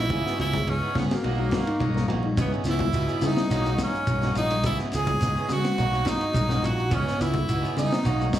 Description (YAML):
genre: afrobeat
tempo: 106 BPM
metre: 4/4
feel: straight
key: C# dorian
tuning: A4 = 439 Hz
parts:
  - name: edgy tenor saxophone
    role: melody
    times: 0.0-8.3 s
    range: A#3 to G#4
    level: -29 LUFS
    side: equal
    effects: none
  - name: brilliant trombone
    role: second line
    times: 0.0-8.3 s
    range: A#3 to G#4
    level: -34 LUFS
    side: right 4 dB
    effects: none
  - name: barky tine electric piano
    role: arpeggios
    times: 0.0-8.4 s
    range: A#3 to G#4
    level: -34 LUFS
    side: left 5 dB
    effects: overdrive, phaser, slapback echo
  - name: fingered electric bass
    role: bass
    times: 0.0-8.3 s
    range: A#1 to C#3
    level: -27 LUFS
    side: right 1 dB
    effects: none
  - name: bright tonewheel organ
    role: accompaniment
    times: 0.1-8.3 s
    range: E3 to D#4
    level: -36 LUFS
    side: equal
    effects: slow rotary speaker, overdrive
  - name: electric guitar at the edge of break-up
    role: stabs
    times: 0.1-8.4 s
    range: E3 to G#4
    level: -33 LUFS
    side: right 8 dB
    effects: none
  - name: crunchy breakbeat drum kit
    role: drums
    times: 0.1-8.4 s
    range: hi-hat, kick drum, ride cymbal, snare drum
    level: -30 LUFS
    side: equal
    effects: none
  - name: congas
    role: percussion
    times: 0.5-8.4 s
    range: none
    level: -32 LUFS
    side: left 6 dB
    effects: none
  - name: shekere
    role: percussion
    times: 2.4-8.4 s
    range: none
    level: -31 LUFS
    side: left 1 dB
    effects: none
room: light reverb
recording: small room reverb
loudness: -22 LUFS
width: side -12 dB against mid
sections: 0.0-8.4 A section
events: none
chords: 0.1 C#m7; 1.2 Bmaj7; 2.4 C#m7; 3.5 Bmaj7; 4.6 C#m7; 5.8 Bmaj7; 6.9 C#m7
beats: | 0.10 0.67 1.24 1.80 | 2.37 2.94 3.51 4.08 | 4.64 5.21 5.78 6.35 | 6.92 7.49 8.05